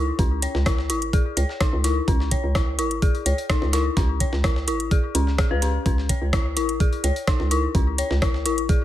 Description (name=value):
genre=minimal techno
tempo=127 BPM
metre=4/4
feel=straight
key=C# minor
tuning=A4 = 441 Hz
part: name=hollow knocking FM bass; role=bass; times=0.0-8.7 s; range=G#1 to C#2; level=-24 LUFS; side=equal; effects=sidechain pumping
part: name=dark detuned synth bell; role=riff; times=0.2-8.7 s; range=C#4 to C#5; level=-26 LUFS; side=left 3 dB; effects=chorus, sidechain pumping, low-pass filter, ping-pong delay
part: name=breakbeat sampler-style drum kit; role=drums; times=0.2-8.8 s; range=hi-hat, snare drum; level=-36 LUFS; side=left 1 dB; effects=high-pass filter on snare, studio reverb, high-pass filter on hats
part: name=electronic kick drum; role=drums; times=0.2-8.8 s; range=none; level=-21 LUFS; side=equal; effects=studio reverb
part: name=garage drum kit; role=drums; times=0.4-8.7 s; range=hi-hat, rim click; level=-28 LUFS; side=equal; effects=studio reverb
room=digital ambience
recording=none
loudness=-20 LUFS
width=side -13 dB against mid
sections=0.0-8.8 A section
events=none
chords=0.0 C#5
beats=| 0.19 0.66 1.13 1.61 | 2.08 2.55 3.02 3.50 | 3.97 4.44 4.91 5.38 | 5.86 6.33 6.80 7.28 | 7.75 8.22 8.69